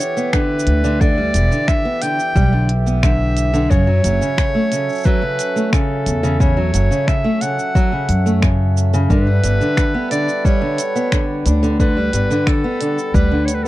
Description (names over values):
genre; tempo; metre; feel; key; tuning
folktronica; 89 BPM; 4/4; straight; unclear; A4 = 441 Hz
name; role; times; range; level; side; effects
clear clarinet; melody; 0.0-13.7 s; A4 to G5; -22 LUFS; equal; tape echo
mellow accordion; sustained chords; 0.0-13.7 s; E3 to F#5; -27 LUFS; right 2 dB; none
minimal click drum kit; drums; 0.0-13.6 s; finger snaps, hi-hat, shaker; -25 LUFS; right 1 dB; none
fingerpicked steel-string acoustic guitar; arpeggios; 0.2-13.7 s; C#3 to D4; -20 LUFS; equal; tape echo
electronic kick drum; drums; 0.3-13.3 s; none; -16 LUFS; equal; overdrive
upright bass; bass; 0.7-13.7 s; E1 to G2; -16 LUFS; equal; none
room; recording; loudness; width
little or no reverb; dry, close 1970s-style studio recording; -14 LUFS; side -16 dB against mid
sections
0.0-13.7 A section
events
none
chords
0.0 Em7; 3.7 F#m7; 9.1 Gmaj7